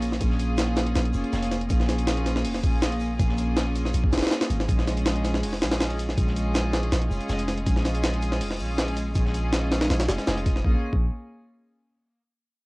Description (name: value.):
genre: drum and bass, jungle.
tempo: 161 BPM.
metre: 4/4.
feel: straight.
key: Bb minor.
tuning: A4 = 440 Hz.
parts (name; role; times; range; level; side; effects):
warm chamber string section; sustained chords; 0.0-10.8 s; Ab3 to Ab4; -29 LUFS; equal; cassette tape.
long sustained 808-style bass; bass; 0.0-11.1 s; F1 to Bb1; -26 LUFS; equal; none.
crunchy breakbeat drum kit; drums; 0.0-10.6 s; hi-hat, shaker, snare drum; -41 LUFS; equal; high-pass filter on hats, cassette tape, high-pass filter on snare, high-pass filter on perc, high-pass filter on room.
jungle sampler-style drum kit; drums; 0.0-11.0 s; hi-hat, kick drum, snare drum; -25 LUFS; equal; cassette tape.
room: light reverb, small room reverb.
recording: home recording on cassette.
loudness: -22 LUFS.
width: side -25 dB against mid.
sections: 0.0-10.6 A section; 10.6-12.1 B section.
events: drop 0.0-10.6.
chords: 0.0 Bbm7.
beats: | 0.21 0.58 0.96 1.33 | 1.70 2.08 2.45 2.82 | 3.19 3.56 3.94 4.31 | 4.68 5.06 5.43 5.80 | 6.17 6.55 6.92 7.29 | 7.67 8.04 8.41 8.78 | 9.15 9.53 9.90 10.27 | 10.65 11.02.